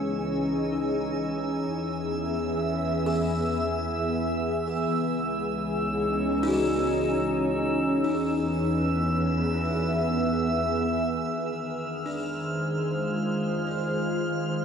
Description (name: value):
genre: ambient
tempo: 56 BPM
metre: 3/4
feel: straight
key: unclear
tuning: A4 = 440 Hz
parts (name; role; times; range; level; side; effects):
- glassy FM pad; sustained chords; 0.0-14.6 s; Eb3 to E5; -26 LUFS; equal; ensemble chorus, built-in reverb
- warm studio cello section; bass; 0.0-14.6 s; Db2 to F2; -34 LUFS; equal; none
- drifting glass-harmonics texture; texture; 0.0-14.6 s; Fb6 to F6; -34 LUFS; right 2 dB; chorus, built-in reverb
- buzzing kalimba; arpeggios; 3.1-13.5 s; D4 to G#4; -34 LUFS; equal; ping-pong delay
room: wet cathedral reverb, RT60 5.1 s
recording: cassette tape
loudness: -24 LUFS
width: side -7 dB against mid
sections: 0.0-11.3 A section; 11.3-14.6 B section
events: none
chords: 0.0 Dbmadd9; 1.7 E; 4.9 Dbmadd9; 8.1 E; 11.3 Fm7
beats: 0.62 | 1.70 2.77 3.84 | 4.91 5.98 7.05 | 8.12 9.20 10.27 | 11.34 12.41 13.48 | 14.55